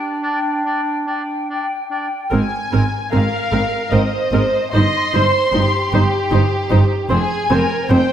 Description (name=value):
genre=cinematic, emotional film score for orchestra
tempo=71-76 BPM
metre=3/4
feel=rubato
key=unclear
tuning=A4 = 440 Hz
part: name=clear clarinet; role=second line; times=0.0-1.9 s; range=D4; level=-22 LUFS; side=right 1 dB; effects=none
part: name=flute section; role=second line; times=0.0-2.3 s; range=G5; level=-25 LUFS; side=left 4 dB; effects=none
part: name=warm oboe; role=second line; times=0.2-2.1 s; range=D4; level=-27 LUFS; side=right 2 dB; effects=none
part: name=muted studio violin section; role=melody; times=2.3-8.1 s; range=Eb5 to C6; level=-22 LUFS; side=left 3 dB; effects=none
part: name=muted studio viola section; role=accompaniment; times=2.3-8.0 s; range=C4 to C5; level=-21 LUFS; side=equal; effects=none
part: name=muted studio cello section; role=bass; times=2.3-8.0 s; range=F2 to Ab2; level=-20 LUFS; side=right 2 dB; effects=none
part: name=muted studio double bass section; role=bass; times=2.3-8.0 s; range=F1 to Ab1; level=-21 LUFS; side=right 2 dB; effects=none
part: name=muted chamber violin section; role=second line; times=3.1-8.1 s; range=G4 to Eb5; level=-20 LUFS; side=right 1 dB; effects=none
room=moderate scoring stage reverb, RT60 1.6 s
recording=none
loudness=-15 LUFS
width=side -10 dB against mid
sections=0.0-2.3 A section; 2.3-8.1 B section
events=none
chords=0.0 Bb6/D (rootless); 2.3 Abadd9; 4.7 Cm/G; 7.1 Fm